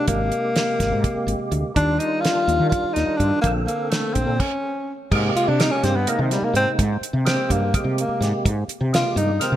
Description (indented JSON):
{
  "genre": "electric jazz fusion",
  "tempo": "251 BPM (eighths)",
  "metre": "7/8",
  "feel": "straight",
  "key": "Ab lydian, Ab major from 5.1 s",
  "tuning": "A4 = 440 Hz",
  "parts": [
    { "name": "breathy tenor saxophone", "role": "melody", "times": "0.0-9.6 s", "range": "Eb3 to F4", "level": "-22 LUFS", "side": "left 1 dB", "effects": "none" },
    { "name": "percussive tonewheel organ", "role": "accompaniment", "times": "0.0-9.6 s", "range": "C3 to Bb4", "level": "-27 LUFS", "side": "right 2 dB", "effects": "slow rotary speaker, chorus vibrato" },
    { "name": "woody fretless electric bass", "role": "bass", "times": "0.1-9.6 s", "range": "Ab1 to Eb3", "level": "-22 LUFS", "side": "equal", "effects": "analog chorus" },
    { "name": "damped 70s drum kit", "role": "drums", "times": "0.1-9.5 s", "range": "crash cymbal, hi-hat, kick drum, snare drum", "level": "-24 LUFS", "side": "right 1 dB", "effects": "gated reverb" }
  ],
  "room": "moderate plate reverb, RT60 1.8 s, small room ambience",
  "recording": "bright 1980s-style digital production",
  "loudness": "-18 LUFS",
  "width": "side -12 dB against mid",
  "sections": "0.0-5.1 A section; 5.1-9.6 B section",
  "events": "stop 4.4-5.1; tenor saxophone solo 5.1-9.6",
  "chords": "0.0 Abmaj9; 1.8 Ebmaj9; 3.4 Bbmaj9; 4.4 N.C.; 5.1 Abmaj9"
}